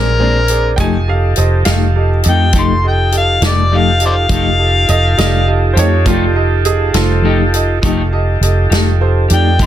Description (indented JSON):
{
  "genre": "slow blues",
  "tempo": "68 BPM (dotted quarters)",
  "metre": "12/8",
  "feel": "straight",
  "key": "unclear",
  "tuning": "A4 = 441 Hz",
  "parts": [
    { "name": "overdriven harmonica", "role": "melody", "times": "0.0-9.7 s", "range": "Bb4 to C6", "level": "-15 LUFS", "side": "left 3 dB", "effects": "none" },
    { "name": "clean electric guitar", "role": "accompaniment", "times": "0.0-9.7 s", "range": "Bb2 to G4", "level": "-19 LUFS", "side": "left 6 dB", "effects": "harmonic tremolo" },
    { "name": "clear concert grand piano", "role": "accompaniment", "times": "0.0-9.7 s", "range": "G4 to Eb5", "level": "-21 LUFS", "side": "right 6 dB", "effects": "none" },
    { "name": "tonewheel organ", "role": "sustained chords", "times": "0.0-9.7 s", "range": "C4 to Bb4", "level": "-22 LUFS", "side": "right 1 dB", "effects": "slow rotary speaker" },
    { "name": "vintage muted fingered electric bass", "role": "bass", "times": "0.0-9.7 s", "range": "F1 to F2", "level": "-13 LUFS", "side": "equal", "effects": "none" },
    { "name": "natural country drum kit", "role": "drums", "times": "0.5-9.7 s", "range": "hi-hat, kick drum, snare drum", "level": "-18 LUFS", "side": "equal", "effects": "none" },
    { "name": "bright upright piano", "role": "second line", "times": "0.8-8.7 s", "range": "F4 to Ab5", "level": "-21 LUFS", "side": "right 7 dB", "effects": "none" }
  ],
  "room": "little or no reverb",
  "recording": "dense, heavily limited modern master",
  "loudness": "-10 LUFS",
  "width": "side -11 dB against mid",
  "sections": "0.0-9.7 A section",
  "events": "none",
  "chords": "0.0 Bb9; 0.8 F9"
}